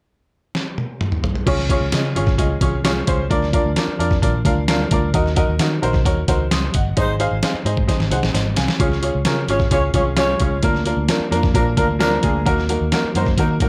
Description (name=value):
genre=uptempo 1960s-style soul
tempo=131 BPM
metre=4/4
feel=straight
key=Db major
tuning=A4 = 440 Hz
part: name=trip hop sampler-style drum kit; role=drums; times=0.5-13.7 s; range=crash cymbal, hi-hat, kick drum, snare drum, toms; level=-23 LUFS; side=equal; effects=none
part: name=clear upright piano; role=accompaniment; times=1.5-13.7 s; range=Bb3 to Eb6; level=-23 LUFS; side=equal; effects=none
part: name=vintage muted fingered electric bass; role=bass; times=1.5-13.7 s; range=G1 to Eb3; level=-24 LUFS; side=equal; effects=none
part: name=congas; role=percussion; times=1.5-13.7 s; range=none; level=-34 LUFS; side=equal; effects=none
part: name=mellow horn section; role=second line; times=7.0-13.7 s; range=F3 to Db5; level=-26 LUFS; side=equal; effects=none
room=light reverb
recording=none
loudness=-19 LUFS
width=mono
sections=0.0-1.5 A section; 1.5-8.8 B section; 8.8-13.7 C section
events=drum fill 0.6-1.5, 7.9-8.8; band accent 7.0-8.8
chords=0.0 N.C.; 1.5 Db; 3.3 Bb/D; 5.1 Ebm; 7.0 Ab; 8.8 Db; 10.6 Bb/D; 12.5 Ebm